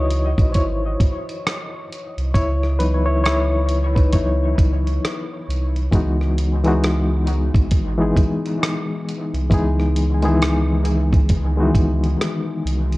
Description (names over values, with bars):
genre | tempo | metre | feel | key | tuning
lo-fi hip hop | 67 BPM | 4/4 | swing 60% on 16ths | C# minor | A4 = 438 Hz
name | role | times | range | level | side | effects
barky reed electric piano | accompaniment | 0.0-13.0 s | D#3 to D#5 | -21 LUFS | left 2 dB | overdrive, fast tremolo, cassette tape, low-pass filter, dub echo
sub bass with octave | bass | 0.0-13.0 s | G#1 to C#2 | -20 LUFS | equal | none
dusty soul sampler-style drum kit | drums | 0.1-13.0 s | hi-hat, kick drum, rim click | -20 LUFS | equal | none
room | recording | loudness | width
light reverb, digital ambience | echo-heavy mix, cassette tape | -17 LUFS | side -20 dB against mid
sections
0.0-5.9 A section; 5.9-13.0 A section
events
reed electric piano solo 0.0-5.9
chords
0.0 C#m11